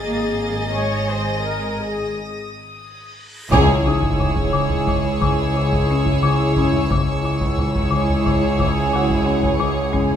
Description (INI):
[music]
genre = cinematic, suspense film score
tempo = 89 BPM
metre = 5/4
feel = straight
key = C# minor from 3.5 s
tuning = A4 = 440 Hz
[part]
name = dark symphonic viola section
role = accompaniment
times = 0.0-10.2 s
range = E4 to Db5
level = -26 LUFS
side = left 1 dB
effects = none
[part]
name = dark symphonic double bass section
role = bass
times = 0.0-10.2 s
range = Ab1 to C#2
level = -24 LUFS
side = right 1 dB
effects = none
[part]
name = rich symphonic cello section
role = bass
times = 0.0-10.2 s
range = C#2 to Bb3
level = -26 LUFS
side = right 1 dB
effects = none
[part]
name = dark baby grand piano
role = texture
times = 0.0-10.2 s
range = D#4 to D#6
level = -31 LUFS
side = left 1 dB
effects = none
[part]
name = warm symphonic violin section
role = texture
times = 0.0-9.9 s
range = C#6 to A6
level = -31 LUFS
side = left 2 dB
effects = none
[part]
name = warm chamber violin section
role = melody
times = 0.1-10.2 s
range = C#5 to Eb5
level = -27 LUFS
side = equal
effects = none
[part]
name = warm symphonic violin section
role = second line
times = 0.1-10.2 s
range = Ab4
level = -25 LUFS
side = right 1 dB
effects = none
[part]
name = reverse cymbal and sub drop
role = sound effects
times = 3.2-6.9 s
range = none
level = -28 LUFS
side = equal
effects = none
[part]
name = folk marimba with hard mallets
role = riff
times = 3.5-10.1 s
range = C#3 to C#4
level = -23 LUFS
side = left 5 dB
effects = none
[part]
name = solo taiko drums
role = drums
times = 3.5-10.2 s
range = none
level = -25 LUFS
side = equal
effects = none
[part]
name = timpani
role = percussion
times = 3.5-4.5 s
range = C#3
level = -27 LUFS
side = left 1 dB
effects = none
[sound]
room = wet scoring stage reverb, RT60 1.8 s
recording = none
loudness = -17 LUFS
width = side -9 dB against mid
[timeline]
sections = 0.0-3.5 A section; 3.5-10.2 B section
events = break 2.1-3.5; reverse cymbal 3.2; band accent 3.5-4.2; impact 3.5-6.9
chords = 0.0 Ab5; 3.5 C#m